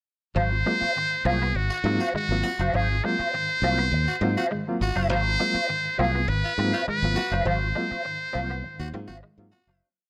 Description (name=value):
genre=funk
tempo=102 BPM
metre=4/4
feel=straight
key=Ab mixolydian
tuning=A4 = 435 Hz
part: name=mellow electric guitar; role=accompaniment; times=0.3-9.9 s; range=Gb4 to F5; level=-32 LUFS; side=equal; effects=wah
part: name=trumpet with metal mute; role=melody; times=0.4-9.2 s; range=Gb4 to C5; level=-29 LUFS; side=equal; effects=none
part: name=semi-hollow electric guitar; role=riff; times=0.4-9.8 s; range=Gb3 to C4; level=-37 LUFS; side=equal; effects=ensemble chorus
part: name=reed electric piano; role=stabs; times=0.4-9.6 s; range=Ab2 to F4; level=-34 LUFS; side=equal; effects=fast tremolo
part: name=modern bright fingered electric bass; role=bass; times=0.4-9.8 s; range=Gb1 to Ab2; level=-29 LUFS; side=equal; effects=none
part: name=raspy tenor saxophone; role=second line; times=1.7-9.9 s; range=F4 to Gb4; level=-35 LUFS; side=equal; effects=none
room=small room ambience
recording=none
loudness=-25 LUFS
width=mono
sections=0.4-9.8 groove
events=fade-out 7.5-9.8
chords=0.4 Ab13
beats=| 0.36 0.95 1.55 2.14 | 2.73 3.33 3.92 4.51 | 5.10 5.69 6.28 6.87 | 7.46 8.05 8.64 9.23